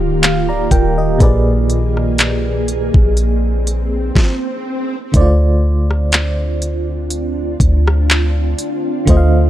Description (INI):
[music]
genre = contemporary R&B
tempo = 61 BPM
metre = 4/4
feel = swing 54% on 16ths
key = unclear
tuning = A4 = 439 Hz
[part]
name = FM electric piano with tremolo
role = accompaniment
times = 0.0-9.5 s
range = Bb2 to Bb5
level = -20 LUFS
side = right 1 dB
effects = none
[part]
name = ethereal airy pad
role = sustained chords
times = 0.0-9.5 s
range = Eb3 to Ab4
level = -21 LUFS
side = right 1 dB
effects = ensemble chorus, built-in reverb
[part]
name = clean 808-style bass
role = bass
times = 0.0-9.5 s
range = D1 to D2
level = -15 LUFS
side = equal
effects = none
[part]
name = smooth R&B drum kit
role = drums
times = 0.2-9.3 s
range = handclaps, hi-hat, kick drum, rim click, snare drum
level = -14 LUFS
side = equal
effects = none
[part]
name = swell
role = sound effects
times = 3.3-5.1 s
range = none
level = -26 LUFS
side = right 1 dB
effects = none
[sound]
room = little or no reverb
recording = dry, gritty hardware recording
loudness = -13 LUFS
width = side -13 dB against mid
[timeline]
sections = 0.0-5.1 A section; 5.1-9.5 B section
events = swell 3.3-5.1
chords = 0.0 Ebmaj7; 1.2 Bb7b9; 5.1 Dm7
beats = 0.22 | 1.21 2.19 3.17 4.16 | 5.14 6.12 7.11 8.09 | 9.07